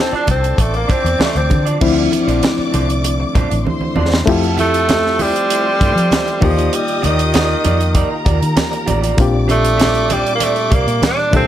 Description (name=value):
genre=lush 1970s-style soul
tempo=98 BPM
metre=4/4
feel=straight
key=unclear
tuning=A4 = 440 Hz
part: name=warm tenor saxophone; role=melody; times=0.0-11.5 s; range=Eb3 to D4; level=-17 LUFS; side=right 1 dB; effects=none
part: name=warm studio string section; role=second line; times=0.0-11.5 s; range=A4 to Eb6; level=-24 LUFS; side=left 1 dB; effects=none
part: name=barky reed electric piano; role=accompaniment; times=0.0-11.5 s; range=Bb2 to A4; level=-21 LUFS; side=left 4 dB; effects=overdrive, fast tremolo
part: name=percussive tonewheel organ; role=sustained chords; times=0.0-11.5 s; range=Bb2 to A5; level=-27 LUFS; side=equal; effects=slow rotary speaker
part: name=electric guitar through a small old amp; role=riff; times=0.1-11.5 s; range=A3 to D5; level=-24 LUFS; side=right 5 dB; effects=none
part: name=vintage muted fingered electric bass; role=bass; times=0.1-11.5 s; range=A1 to F3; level=-18 LUFS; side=equal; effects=none
part: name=tight funk drum kit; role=drums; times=0.3-11.5 s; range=crash cymbal, hi-hat, kick drum, snare drum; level=-18 LUFS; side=equal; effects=none
part: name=congas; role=percussion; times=0.3-11.5 s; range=none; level=-24 LUFS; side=right 3 dB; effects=none
room=light reverb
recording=none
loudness=-13 LUFS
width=side -11 dB against mid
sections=0.0-1.8 A section; 1.8-4.3 B section; 4.3-11.5 C section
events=tenor saxophone solo 0.0-1.8; reed electric piano solo 1.8-4.3; drum fill 3.7-4.3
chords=0.0 Dm7; 4.3 Fmaj9; 6.4 Ebmaj9; 9.2 Bb69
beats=0.59 1.20 | 1.82 2.43 3.04 3.66 | 4.27 4.88 5.50 6.11 | 6.72 7.34 7.95 8.57 | 9.18 9.79 10.41 11.02